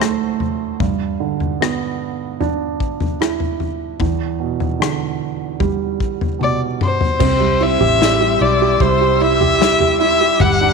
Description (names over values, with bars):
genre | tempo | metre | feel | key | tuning
pop ballad | 75 BPM | 4/4 | straight | unclear | A4 = 441 Hz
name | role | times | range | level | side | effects
warm grand piano | accompaniment | 0.0-10.7 s | D2 to G4 | -19 LUFS | right 13 dB | none
unplugged drum kit | drums | 0.0-10.6 s | crash cymbal, kick drum, rim click, snare drum, toms | -21 LUFS | left 4 dB | none
warm violin | melody | 6.4-10.7 s | C5 to F#5 | -17 LUFS | left 5 dB | none
muted studio string section | sustained chords | 7.2-10.7 s | G3 to E6 | -25 LUFS | left 2 dB | none
picked steel-string acoustic guitar | arpeggios | 7.2-10.7 s | C3 to G4 | -23 LUFS | left 13 dB | none
vintage muted fingered electric bass | bass | 7.2-10.7 s | G1 to C2 | -20 LUFS | left 1 dB | none
room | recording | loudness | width
light reverb | 1960s-style stereo with parts hard left and right | -15 LUFS | side -4 dB against mid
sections
0.0-7.2 A section; 7.2-10.7 B section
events
drum fill 6.4-7.2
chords
0.0 D; 0.8 G6; 4.0 Em7; 7.2 C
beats
0.00 | 0.80 1.60 2.40 3.20 | 4.00 4.80 5.60 6.40 | 7.20 8.00 8.80 9.60 | 10.40